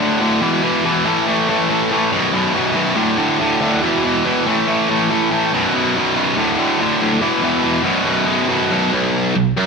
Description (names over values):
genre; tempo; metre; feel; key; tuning
rock; 141 BPM; 4/4; straight; B minor; A4 = 442 Hz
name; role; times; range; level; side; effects
tight distorted guitar; solo; 0.0-9.7 s; B1 to A3; -14 LUFS; equal; distortion
room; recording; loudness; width
wet stone room reverb, RT60 1.0 s; band playing live in one room; -14 LUFS; side -4 dB against mid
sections
0.0-8.9 A section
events
none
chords
0.4 E5; 1.0 A5; 2.1 B5; 3.0 D5; 3.8 E5; 4.5 A5; 5.5 B5; 6.4 D5; 7.2 E5; 7.9 B5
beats
| 0.41 0.83 1.26 1.69 | 2.11 2.54 2.96 3.39 | 3.81 4.24 4.67 5.09 | 5.52 5.94 6.37 6.79 | 7.22 7.64 8.07 8.49 | 8.92 9.34